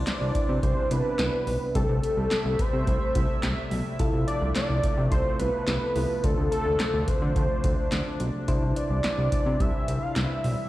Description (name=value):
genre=synth-pop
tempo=107 BPM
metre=4/4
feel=straight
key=C major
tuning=A4 = 440 Hz
part: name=soft electric-piano-like synth keys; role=accompaniment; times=0.0-10.7 s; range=C4 to C5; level=-36 LUFS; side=left 1 dB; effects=chorus
part: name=chorused pulse-width pad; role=sustained chords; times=0.0-10.7 s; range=C3 to E5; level=-33 LUFS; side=equal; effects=none
part: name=fat analog bass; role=bass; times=0.0-10.6 s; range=B1 to D3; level=-27 LUFS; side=equal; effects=none
part: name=fat analog lead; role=melody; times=0.1-10.7 s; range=A4 to F5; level=-29 LUFS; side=equal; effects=chorus
part: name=electro analog drum machine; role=drums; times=0.1-10.6 s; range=handclaps, hi-hat, kick drum, snare drum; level=-28 LUFS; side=equal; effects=none
room=light reverb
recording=played on a big sound system in a bare room, stone room reverb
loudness=-23 LUFS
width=side -16 dB against mid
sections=0.0-10.7 A section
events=none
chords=0.0 Cadd9; 1.8 Am7/C; 4.0 Fmaj7/C; 6.2 Dm7; 8.5 Cadd9